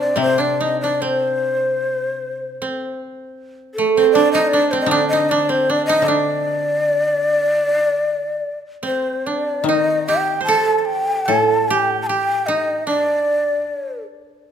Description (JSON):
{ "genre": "japanese traditional, Japanese chamber music", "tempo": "76 BPM", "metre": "4/4", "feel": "uneven beats, rubato", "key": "D in sen", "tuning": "A4 = 440 Hz", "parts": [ { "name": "breathy mellow shakuhachi", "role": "melody", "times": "0.0-14.0 s", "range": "A4 to A5", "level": "-18 LUFS", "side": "left 2 dB", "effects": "none" }, { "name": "koto", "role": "second line", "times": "0.0-14.5 s", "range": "A3 to C5", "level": "-20 LUFS", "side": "right 6 dB", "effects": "none" }, { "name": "koto", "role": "accompaniment", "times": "0.0-13.7 s", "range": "A2 to Eb3", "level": "-26 LUFS", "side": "left 5 dB", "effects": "none" } ], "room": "moderate recital hall reverb, RT60 1.8 s", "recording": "none", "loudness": "-16 LUFS", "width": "side -8 dB against mid", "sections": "0.0-9.7 A section; 9.7-14.5 B section", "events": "none", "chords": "none" }